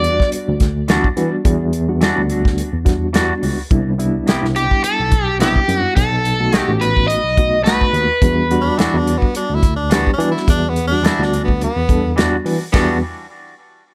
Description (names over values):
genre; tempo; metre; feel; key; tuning
straight-eighth soul blues; 106 BPM; 4/4; swing 56% on 16ths; E minor; A4 = 438 Hz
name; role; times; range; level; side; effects
cranked stack guitar; melody; 0.0-0.3, 4.6-8.7 s; G4 to D#5; -20 LUFS; equal; overdrive, spring reverb, plate reverb
mellow reed electric piano; accompaniment; 0.0-13.0 s; G3 to A4; -24 LUFS; equal; fast tremolo
overdriven tine electric piano; bass; 0.0-13.0 s; A1 to E3; -22 LUFS; equal; fast tremolo
warm soul drum kit; drums; 0.0-12.9 s; hi-hat, kick drum, ride cymbal, snare drum; -19 LUFS; equal; none
clean electric guitar; stabs; 0.9-13.0 s; B2 to G4; -25 LUFS; equal; plate reverb, tape echo
bright tenor saxophone; second line; 8.6-13.0 s; B3 to E4; -24 LUFS; equal; plate reverb
room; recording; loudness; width
little or no reverb; none; -16 LUFS; mono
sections
0.0-12.7 A section; 12.7-13.9 B section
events
none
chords
0.0 Em9; 3.7 Cmaj7; 6.0 B7; 8.2 Em9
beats
0.32 0.89 | 1.45 2.01 2.58 3.14 | 3.71 4.27 4.83 5.40 | 5.96 6.53 7.09 7.65 | 8.22 8.78 9.35 9.91 | 10.48 11.04 11.61 12.17 | 12.74